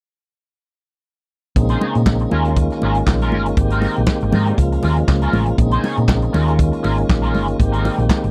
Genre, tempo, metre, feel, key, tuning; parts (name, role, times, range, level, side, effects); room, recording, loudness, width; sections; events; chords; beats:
disco; 119 BPM; 4/4; swing 56% on 16ths; Bb dorian; A4 = 438 Hz
electric guitar at the edge of break-up; accompaniment; 1.6-8.3 s; G3 to Db5; -26 LUFS; equal; wah, ensemble chorus
tonewheel organ; sustained chords; 1.6-8.3 s; Db3 to G4; -24 LUFS; equal; overdrive, fast rotary speaker
hollow-body short-scale fingered electric bass; bass; 1.6-8.3 s; G1 to Bb2; -20 LUFS; equal
vintage drum kit; drums; 1.6-8.3 s; handclaps, hi-hat, kick drum, snare drum; -20 LUFS; equal
congas; percussion; 1.6-8.2 s; -26 LUFS; equal
little or no reverb; dry, close 1970s-style studio recording; -17 LUFS; mono
1.6-8.3 A section
1.6 Bbm11; 2.3 Eb9sus4; 3.6 Abmaj9; 4.6 Db6; 5.6 Bbm11; 6.3 Eb9sus4; 7.6 Abmaj9
| 1.56 2.06 2.56 3.07 | 3.57 4.07 4.58 5.08 | 5.58 6.08 6.59 7.09 | 7.59 8.10